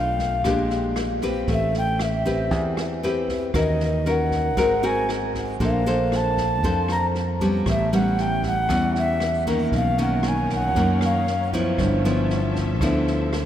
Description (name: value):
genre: bossa nova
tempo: 116 BPM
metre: 4/4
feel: straight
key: unclear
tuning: A4 = 441 Hz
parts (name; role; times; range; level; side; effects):
- alto ocarina; melody; 0.0-11.5 s; Eb5 to Bb5; -26 LUFS; equal; none
- nylon-string guitar; accompaniment; 0.0-13.5 s; F#2 to C5; -23 LUFS; left 1 dB; none
- fingered electric bass; bass; 0.0-13.5 s; G1 to F#2; -26 LUFS; right 1 dB; none
- open jazz drum kit; drums; 0.2-13.4 s; kick drum, rim click, snare drum; -31 LUFS; equal; none
- muted studio string section; sustained chords; 9.7-13.5 s; C#4 to E5; -33 LUFS; left 1 dB; none
room: wet cathedral reverb, RT60 5.5 s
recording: in a vast, echoing space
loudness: -20 LUFS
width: side -10 dB against mid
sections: 0.0-13.5 A section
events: ocarina solo 0.0-13.5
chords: 0.5 Bb13; 1.5 Am9; 3.5 Ebm7; 4.6 Ab9; 5.6 Bbmaj9; 7.7 A9; 9.7 Bmaj9; 11.8 G13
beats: 0.45 0.97 | 1.48 2.00 2.51 3.03 | 3.54 4.06 4.58 5.09 | 5.61 6.12 6.64 7.15 | 7.67 8.18 8.70 9.21 | 9.72 10.24 10.75 11.27 | 11.78 12.30 12.81 13.33